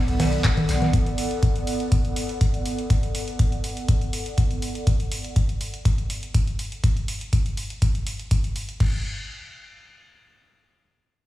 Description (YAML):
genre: acid house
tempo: 122 BPM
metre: 4/4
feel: straight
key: unclear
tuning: A4 = 441 Hz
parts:
  - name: airy breathy pad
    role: texture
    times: 0.0-4.9 s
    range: B3 to F#5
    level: -30 LUFS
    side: right 1 dB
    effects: chorus, sidechain pumping
  - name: warm sub bass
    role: bass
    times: 0.1-0.9 s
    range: B1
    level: -24 LUFS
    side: left 1 dB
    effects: tube saturation, sidechain pumping
  - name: punchy analog drum machine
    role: drums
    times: 0.1-8.9 s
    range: congas, crash cymbal, handclaps, hi-hat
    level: -31 LUFS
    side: equal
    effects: overdrive, studio reverb
  - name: warm soul drum kit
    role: drums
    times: 0.2-0.9 s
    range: hi-hat, snare drum, tambourine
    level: -35 LUFS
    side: left 1 dB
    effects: high-pass filter on hats, studio reverb, high-pass filter on snare, high-pass filter on perc, high-pass filter on room
  - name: electronic kick drum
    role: drums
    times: 0.4-8.9 s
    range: none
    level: -22 LUFS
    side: equal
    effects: studio reverb
room: small room reverb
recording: played on a big sound system in a bare room, stone room reverb, studio ambience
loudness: -21 LUFS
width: side -15 dB against mid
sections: 0.0-8.8 A section; 8.8-11.3 B section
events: none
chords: 0.0 Bm7; 8.8 N.C.